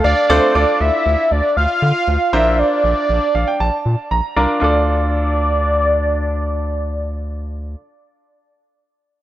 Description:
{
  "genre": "synth-pop",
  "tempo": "118 BPM",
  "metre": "4/4",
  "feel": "straight",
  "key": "D minor",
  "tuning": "A4 = 440 Hz",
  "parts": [
    { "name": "fat analog lead", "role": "melody", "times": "0.0-7.8 s", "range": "C5 to F5", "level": "-17 LUFS", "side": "equal", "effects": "chorus, phaser, low-pass filter" },
    { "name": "bright grand piano", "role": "accompaniment", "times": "0.0-7.8 s", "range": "A3 to Bb5", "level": "-19 LUFS", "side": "right 1 dB", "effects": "low-pass filter" },
    { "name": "round analog bass", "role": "bass", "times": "0.0-7.8 s", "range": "Bb1 to D3", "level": "-19 LUFS", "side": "equal", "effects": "none" }
  ],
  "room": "light reverb, studio reverb",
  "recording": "dry, gritty hardware recording, transformer saturation",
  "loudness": "-14 LUFS",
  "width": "side -13 dB against mid",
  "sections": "0.6-4.6 A section; 4.6-8.7 B section",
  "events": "grand piano fill 0.0-0.6, 3.1-4.6",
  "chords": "0.0 Dm; 2.3 Bbadd9; 4.6 Dm",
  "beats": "0.04 | 0.55 1.06 1.57 2.08 | 2.58 3.09 3.60 4.11 | 4.62 5.13 5.63 6.14 | 6.65 7.16 7.67"
}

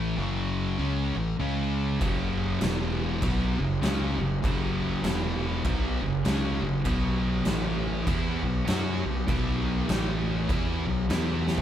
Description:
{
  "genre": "stoner and doom metal",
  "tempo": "99 BPM",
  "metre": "4/4",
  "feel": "swing 61% on 8ths",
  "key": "unclear",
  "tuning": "A4 = 440 Hz",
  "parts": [
    { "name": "scooped high-gain guitar", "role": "riff", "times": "0.0-11.6 s", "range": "E2 to F#4", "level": "-34 LUFS", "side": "equal", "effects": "distortion" },
    { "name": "thick fuzz guitar", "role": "riff", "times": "0.0-11.6 s", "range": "E2 to F#4", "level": "-31 LUFS", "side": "left 6 dB", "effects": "distortion" },
    { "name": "thick fuzz guitar", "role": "riff", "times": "0.0-11.6 s", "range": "E2 to F#4", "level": "-33 LUFS", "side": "right 7 dB", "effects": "distortion" },
    { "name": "fuzz fingered electric bass", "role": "bass", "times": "0.0-11.6 s", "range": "E1 to F#2", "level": "-31 LUFS", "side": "equal", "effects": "overdrive" },
    { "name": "oversized low-tuned drum kit", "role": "drums", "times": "2.0-11.6 s", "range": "crash cymbal, kick drum, snare drum, toms", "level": "-30 LUFS", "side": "equal", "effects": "none" }
  ],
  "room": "moderate large studio reverb, RT60 0.9 s",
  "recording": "band playing live in one room",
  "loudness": "-25 LUFS",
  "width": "side -10 dB against mid",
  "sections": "0.0-11.6 A section",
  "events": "drum fill 11.4",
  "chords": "0.2 F#5; 0.8 A5; 1.4 C#5; 2.0 F#5; 2.6 E5; 3.2 F#5; 5.0 E5; 5.6 F#5; 6.9 B5; 7.5 A5; 8.1 B5; 9.9 A5; 10.5 B5; 11.1 E5",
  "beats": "0.19 0.79 1.40 | 2.01 2.61 3.22 3.83 | 4.43 5.04 5.64 6.25 | 6.86 7.46 8.07 8.67 | 9.28 9.88 10.48 11.09"
}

